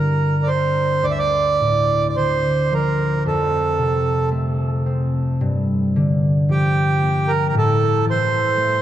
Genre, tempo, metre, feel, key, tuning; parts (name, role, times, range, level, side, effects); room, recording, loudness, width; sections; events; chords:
celtic folk, Celtic slow air; 54-59 BPM; 4/4; rubato; G dorian; A4 = 439 Hz
accordion; melody; 0.0-8.8 s; G4 to E5; -20 LUFS; right 4 dB; tape echo
concert harp; accompaniment; 0.0-8.8 s; D2 to E4; -19 LUFS; left 1 dB
moderate cathedral reverb, RT60 5.5 s; dark, warm production; -16 LUFS; side -12 dB against mid
0.0-8.8 A section
0.0 Gm; 1.1 Dm; 3.3 F; 5.4 Gm7; 7.5 Am